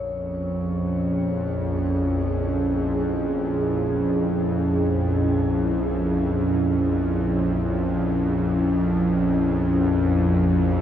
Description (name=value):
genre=dark ambient drone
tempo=free time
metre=none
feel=none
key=unclear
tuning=A4 = 442 Hz
part: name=deep dark ambient pad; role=sustained chords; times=0.3-10.8 s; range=Db4 to Bb4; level=-24 LUFS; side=equal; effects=chorus, built-in reverb, shimmer reverb
part: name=bowed-like drone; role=drone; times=0.0-10.8 s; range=Bb1 to F2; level=-23 LUFS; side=equal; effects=built-in reverb
part: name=quartz singing bowl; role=texture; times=0.0-10.8 s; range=Db5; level=-37 LUFS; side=left 4 dB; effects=shimmer reverb
room=wet huge ambient reverb, RT60 8.2 s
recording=dark, warm production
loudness=-20 LUFS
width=side -10 dB against mid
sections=0.0-10.8 A section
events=none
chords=0.0 Dbm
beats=free time